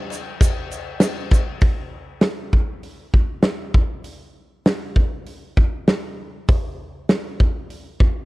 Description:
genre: rock.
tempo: 99 BPM.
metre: 4/4.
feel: straight.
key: none.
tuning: none.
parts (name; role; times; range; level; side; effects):
big rock drum kit; drums; 0.1-8.1 s; crash cymbal, hi-hat, kick drum, snare drum; -18 LUFS; equal; none.
egg shaker; percussion; 0.1-1.5 s; none; -34 LUFS; right 7 dB; none.
room: little or no reverb.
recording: dry, close 1970s-style studio recording.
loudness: -18 LUFS.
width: side -20 dB against mid.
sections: 0.0-1.6 A section; 1.6-8.2 B section.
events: none.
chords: none.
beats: 0.42 1.02 | 1.63 2.23 2.84 3.45 | 4.05 4.66 5.27 5.88 | 6.48 7.09 7.70.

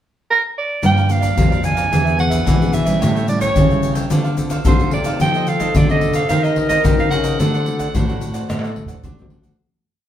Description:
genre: samba and choro.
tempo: 110 BPM.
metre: 4/4.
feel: straight.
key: unclear.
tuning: A4 = 440 Hz.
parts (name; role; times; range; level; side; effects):
growling soprano saxophone; melody; 0.3-9.0 s; Bb4 to Ab5; -20 LUFS; right 3 dB; plate reverb.
cavaquinho; accompaniment; 0.8-9.6 s; D4 to G5; -29 LUFS; right 5 dB; none.
nylon-string guitar; accompaniment; 0.8-9.6 s; G2 to Bb4; -26 LUFS; left 1 dB; none.
nylon-string guitar; bass; 0.8-9.5 s; E2 to F3; -20 LUFS; equal; none.
tube shaker, surdo, pandeiro and tamborim; percussion; 0.8-9.6 s; none; -19 LUFS; left 1 dB; none.
warm clarinet; second line; 5.2-9.6 s; F#4 to Bb4; -24 LUFS; left 5 dB; none.
room: wet studio reverb, RT60 0.9 s.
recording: heard from further back in the room.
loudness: -14 LUFS.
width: side -10 dB against mid.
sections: 0.0-0.8 pickup bar; 0.8-9.6 A section.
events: fade-out 7.4-9.6; drum fill 8.5-9.6.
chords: 0.0 N.C.; 0.8 Gm7; 1.9 E7; 3.0 A7; 4.1 Dm7; 5.2 F7; 6.3 Cm7/Eb; 7.4 D7.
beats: 0.28 | 0.83 1.38 1.93 2.47 | 3.02 3.57 4.11 4.66 | 5.21 5.75 6.30 6.85 | 7.40 7.95 8.49 9.04.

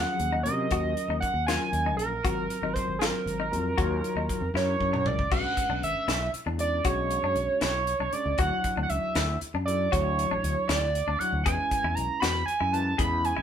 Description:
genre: electric jazz fusion.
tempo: 78 BPM (dotted quarters).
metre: 6/8.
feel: straight.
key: Eb dorian, B dorian from 5.3 s.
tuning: A4 = 440 Hz.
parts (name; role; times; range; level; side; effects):
overdriven synth lead; melody; 0.0-13.4 s; Bb4 to B5; -28 LUFS; right 3 dB; none.
bright tine electric piano; accompaniment; 0.0-13.4 s; F3 to D5; -34 LUFS; left 4 dB; medium stereo tremolo.
semi-hollow electric guitar; stabs; 0.0-13.4 s; D4 to G#4; -33 LUFS; left 7 dB; none.
fretless electric bass; bass; 0.0-13.4 s; Ab1 to C3; -31 LUFS; left 1 dB; none.
crisp fusion drum kit; drums; 0.2-13.4 s; crash cymbal, hi-hat, kick drum, snare drum, toms; -31 LUFS; left 1 dB; none.
room: moderate studio reverb, RT60 0.5 s.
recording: band playing live in one room.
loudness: -25 LUFS.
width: side -8 dB against mid.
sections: 0.0-5.3 A section; 5.3-13.4 B section.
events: drum fill 4.5-5.3.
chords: 0.0 Ebm11; 2.2 Ab13; 3.8 Ebm9; 4.5 Gb7b13; 5.3 Bm69; 8.4 Dmaj9; 11.5 C#m7.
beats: | 0.71 1.48 | 2.25 3.02 | 3.78 4.55 | 5.32 6.08 | 6.85 7.62 | 8.38 9.15 | 9.92 10.69 | 11.45 12.22 | 12.98.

